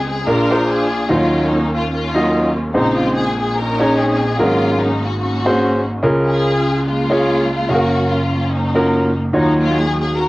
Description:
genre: gospel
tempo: 146 BPM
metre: 4/4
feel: swing 58% on 8ths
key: Db major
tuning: A4 = 436 Hz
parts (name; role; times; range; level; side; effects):
- warm studio string section; melody; 0.0-10.3 s; Gb3 to Bb4; -19 LUFS; equal; cassette tape
- warm baby grand piano; accompaniment; 0.0-10.3 s; Gb1 to F5; -16 LUFS; equal; cassette tape
room: moderate booth ambience, RT60 0.2 s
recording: home recording on cassette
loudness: -14 LUFS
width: side -19 dB against mid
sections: 0.0-10.3 A section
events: none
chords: 0.3 Bb7; 1.1 Ebm9; 2.7 Bbm11; 4.4 Ab9sus4; 6.0 Db6; 7.7 Gbmaj7; 9.3 Ebm9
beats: 0.27 0.68 | 1.09 1.50 1.92 2.33 | 2.74 3.15 3.56 3.98 | 4.39 4.80 5.21 5.62 | 6.04 6.45 6.86 7.28 | 7.69 8.10 8.51 8.93 | 9.34 9.75 10.16

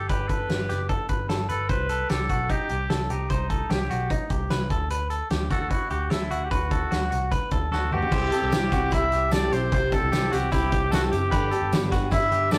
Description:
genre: jangly indie pop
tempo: 150 BPM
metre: 4/4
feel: straight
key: unclear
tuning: A4 = 440 Hz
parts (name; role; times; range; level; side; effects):
- clear trumpet; melody; 0.0-12.6 s; Eb4 to E5; -30 LUFS; equal; none
- direct-recorded clean electric guitar; arpeggios; 0.0-12.6 s; Eb4 to C5; -33 LUFS; equal; none
- vintage muted picked electric bass; bass; 0.0-12.6 s; F#1 to D2; -31 LUFS; equal; none
- loose indie drum kit; drums; 0.1-12.6 s; crash cymbal, hi-hat, kick drum, snare drum, toms; -30 LUFS; equal; none
- picked steel-string acoustic guitar; accompaniment; 8.1-12.6 s; G2 to G4; -30 LUFS; equal; none
- tambourine; percussion; 8.3-12.6 s; none; -49 LUFS; equal; none
- glockenspiel with brass mallets; second line; 11.3-12.6 s; B5; -37 LUFS; equal; none
room: wet studio reverb, RT60 0.6 s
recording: rough rehearsal-room recording, tube saturation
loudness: -25 LUFS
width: mono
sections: 0.0-8.1 A section; 8.1-12.6 B section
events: drum fill 7.7-8.1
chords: 0.0 G; 1.7 Cm; 4.7 D; 8.1 C; 11.3 G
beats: | 0.09 0.49 0.90 1.30 | 1.70 2.10 2.50 2.90 | 3.30 3.70 4.11 4.51 | 4.91 5.31 5.71 6.11 | 6.51 6.92 7.32 7.72 | 8.12 8.52 8.92 9.32 | 9.72 10.12 10.52 10.92 | 11.32 11.72 12.12 12.52

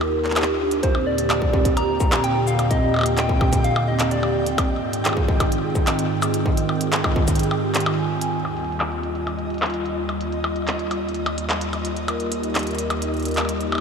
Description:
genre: IDM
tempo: 128 BPM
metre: 4/4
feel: straight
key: Eb major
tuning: A4 = 442 Hz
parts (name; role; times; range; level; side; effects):
- warbly tape-like pad; sustained chords; 0.0-13.8 s; Eb2 to G4; -23 LUFS; right 1 dB; chorus, built-in reverb
- vibraphone with soft mallets; arpeggios; 0.0-8.3, 12.1-13.7 s; C4 to Ab5; -28 LUFS; right 1 dB; ping-pong delay
- glitchy drum kit; drums; 0.0-13.8 s; handclaps, hi-hat, percussion blips, shaker; -25 LUFS; left 1 dB; low-pass filter on hats, low-pass filter on perc, low-pass filter on snare, ping-pong delay
- soft struck synth lead; melody; 0.8-4.5 s; C5 to Bb5; -27 LUFS; left 1 dB; chorus, cassette tape, analog delay
- electronic kick drum; drums; 0.8-7.4 s; none; -21 LUFS; equal; distortion
- flickering grainy texture; texture; 1.7-13.8 s; Eb5 to G5; -35 LUFS; equal; built-in reverb
room: wet huge ambient reverb, RT60 7.1 s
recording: dreamy mix soaked in reverb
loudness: -19 LUFS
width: side -6 dB against mid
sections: 0.0-8.3 A section; 8.3-13.8 B section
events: kick drops out 7.4-8.3; filter sweep on drum 8.3-13.8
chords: 0.0 Ebadd9; 0.8 Cm9/Eb; 4.6 Ab6; 8.3 Ebadd9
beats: 0.36 | 0.83 1.30 1.77 2.24 | 2.71 3.18 3.65 4.11 | 4.58 5.05 5.52 5.99 | 6.46 6.93 7.39 7.86 | 8.33 8.80 9.27 9.74 | 10.21 10.68 11.14 11.61 | 12.08 12.55 13.02 13.49

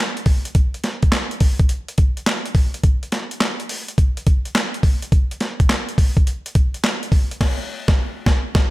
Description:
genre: R&B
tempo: 105 BPM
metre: 4/4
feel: swing 66% on 16ths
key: none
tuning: none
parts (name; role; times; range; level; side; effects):
- boom bap sampler-style drum kit; drums; 0.2-8.7 s; crash cymbal, handclaps, hi-hat, kick drum, snare drum; -16 LUFS; equal; none
room: little or no reverb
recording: none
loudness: -17 LUFS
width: side -18 dB against mid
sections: 0.0-8.7 A section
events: band accent 7.4-8.7; silent gap 8.6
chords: none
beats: | 0.55 1.12 1.69 2.27 | 2.84 3.41 3.98 4.55 | 5.12 5.69 6.27 6.84 | 7.41 7.98 8.55

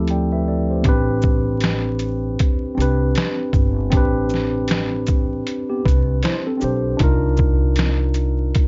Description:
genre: lo-fi hip hop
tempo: 78 BPM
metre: 4/4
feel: swing 59% on 16ths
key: A minor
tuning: A4 = 440 Hz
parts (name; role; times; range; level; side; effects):
- mellow tine electric piano; accompaniment; 0.0-8.7 s; D2 to G5; -24 LUFS; equal; cassette tape, low-pass filter
- trip hop sampler-style drum kit; drums; 0.1-8.7 s; hi-hat, kick drum, shaker, snare drum; -22 LUFS; equal; overdrive, vintage 12-bit sampler grit
- upright bass; bass; 0.9-8.5 s; G1 to C2; -23 LUFS; equal; none
- mellow tine electric piano; second line; 5.7-7.0 s; B3 to C5; -28 LUFS; equal; low-pass filter, tape echo
room: light reverb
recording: dark, warm production, vinyl crackle, nothing above 7.6 kHz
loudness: -19 LUFS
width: mono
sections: 0.8-8.7 A section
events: none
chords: 0.0 Dm11; 0.8 Am11; 7.0 Cm11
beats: 0.08 | 0.85 1.62 2.39 3.15 | 3.92 4.69 5.46 6.23 | 7.00 7.77 8.54

